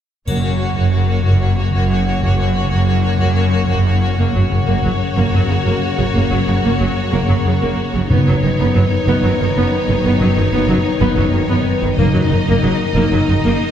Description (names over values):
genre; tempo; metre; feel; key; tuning
cinematic, heroic adventure film score; 123 BPM (dotted quarters); 12/8; straight; F# major; A4 = 440 Hz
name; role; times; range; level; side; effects
rich symphonic violin section; melody; 0.3-13.7 s; C#5 to D#5; -27 LUFS; left 3 dB; none
clear studio violin section; second line; 0.3-13.7 s; D#4 to F#4; -23 LUFS; left 3 dB; none
rich studio viola section; accompaniment; 0.3-13.6 s; C#3 to B3; -22 LUFS; equal; none
clear symphonic double bass section; bass; 0.3-13.5 s; F#1; -18 LUFS; right 1 dB; none
rich symphonic cello section; bass; 0.3-13.5 s; F#2; -18 LUFS; right 1 dB; none
timpani; percussion; 0.3-0.7, 8.1-8.6, 12.0-12.4 s; F#2; -21 LUFS; equal; none
triangle; percussion; 0.3-0.9 s; none; -35 LUFS; left 4 dB; none
warm French horn section; sustained chords; 4.2-13.7 s; C#3 to B4; -22 LUFS; left 2 dB; none
room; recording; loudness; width
wet scoring stage reverb, RT60 1.6 s; heard from further back in the room; -13 LUFS; side -9 dB against mid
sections
0.3-4.2 A section; 4.2-13.7 B section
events
build-up 4.2-13.7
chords
0.3 F#; 8.1 Badd9/F#; 12.0 D#m/F#